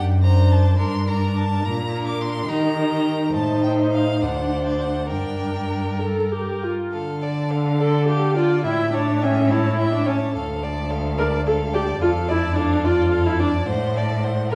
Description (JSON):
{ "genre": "quick classical-period movement for string quartet", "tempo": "71 BPM (dotted quarters)", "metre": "6/8", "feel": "rubato", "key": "G minor, D minor from 6.9 s", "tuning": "A4 = 440 Hz", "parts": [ { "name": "clear violin", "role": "melody", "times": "0.0-14.6 s", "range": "D5 to D6", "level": "-34 LUFS", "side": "equal", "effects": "none" }, { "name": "rich cello", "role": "bass", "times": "0.0-14.6 s", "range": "D2 to Eb3", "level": "-24 LUFS", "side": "equal", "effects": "none" }, { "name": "rich violin", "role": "second line", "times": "0.2-14.6 s", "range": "G4 to E5", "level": "-30 LUFS", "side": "equal", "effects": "none" }, { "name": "rich viola", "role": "accompaniment", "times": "0.2-14.6 s", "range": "C#4 to Bb4", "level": "-25 LUFS", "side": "equal", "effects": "none" } ], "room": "wet recital hall reverb, RT60 1.4 s", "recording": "heard from further back in the room, vinyl crackle", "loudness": "-21 LUFS", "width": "mono", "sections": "0.0-6.9 A section; 6.9-14.6 B section", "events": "none", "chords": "0.0 D7/F#; 0.8 Gm; 1.6 Bb; 2.5 Eb; 3.3 Adim; 4.2 D7; 5.1 Gm; 6.9 Dm; 8.6 A7; 10.3 Dm; 12.0 Dm/F; 13.7 D7/A", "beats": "0.80 | 1.65 2.49 | 3.35 4.22 | 5.11 6.03 | 6.93 7.79 | 8.64 9.50 | 10.35 11.18 | 12.02 12.84 | 13.68 14.52" }